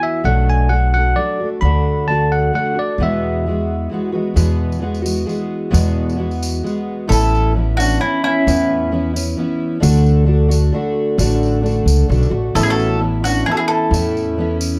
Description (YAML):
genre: acoustic folk duo or small band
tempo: 132 BPM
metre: 3/4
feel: straight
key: A major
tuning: A4 = 439 Hz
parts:
  - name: bell-like tine electric piano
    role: second line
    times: 0.0-3.9, 7.1-9.1, 12.6-14.6 s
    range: C#4 to B5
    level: -23 LUFS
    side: equal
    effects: none
  - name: fingerpicked twelve-string acoustic guitar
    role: accompaniment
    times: 0.0-14.8 s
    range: E2 to F#4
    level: -22 LUFS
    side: equal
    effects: none
  - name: upright bass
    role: bass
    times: 0.2-14.8 s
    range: A1 to E2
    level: -19 LUFS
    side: equal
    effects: none
  - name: tambourine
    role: percussion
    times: 4.4-14.7 s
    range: none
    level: -32 LUFS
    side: equal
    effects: none
  - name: mandolin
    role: melody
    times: 7.1-9.1, 12.6-14.6 s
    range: E4 to A4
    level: -21 LUFS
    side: equal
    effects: none
room: light reverb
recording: dark, warm production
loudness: -17 LUFS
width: mono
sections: 0.0-4.4 A section; 4.4-7.1 B section; 7.1-14.8 C section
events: tine electric piano solo 0.0-4.4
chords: 0.3 Bm7; 1.6 D; 3.0 Eadd9; 7.1 Aadd9; 9.8 D; 12.6 Aadd9